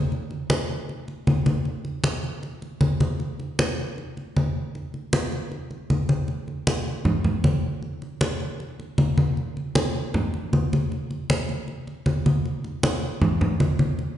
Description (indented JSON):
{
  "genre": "latin",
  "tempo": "156 BPM",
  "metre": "4/4",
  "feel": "straight",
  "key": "none",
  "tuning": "none",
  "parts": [
    { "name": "congas", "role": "percussion", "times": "0.1-14.2 s", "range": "none", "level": "-23 LUFS", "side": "equal", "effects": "none" }
  ],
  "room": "wet scoring stage reverb, RT60 1.6 s",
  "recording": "recorded in a church or concert hall, nothing above 11.0 kHz",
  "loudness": "-22 LUFS",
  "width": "side -11 dB against mid",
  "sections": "0.0-6.3 A section; 6.3-14.2 B section",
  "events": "none",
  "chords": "none",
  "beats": "| 0.11 0.50 0.89 1.27 | 1.66 2.04 2.43 2.81 | 3.20 3.58 3.97 4.36 | 4.74 5.13 5.51 5.90 | 6.29 6.67 7.06 7.44 | 7.83 8.21 8.60 8.99 | 9.37 9.76 10.14 10.53 | 10.91 11.30 11.69 12.07 | 12.46 12.84 13.22 13.61 | 13.99"
}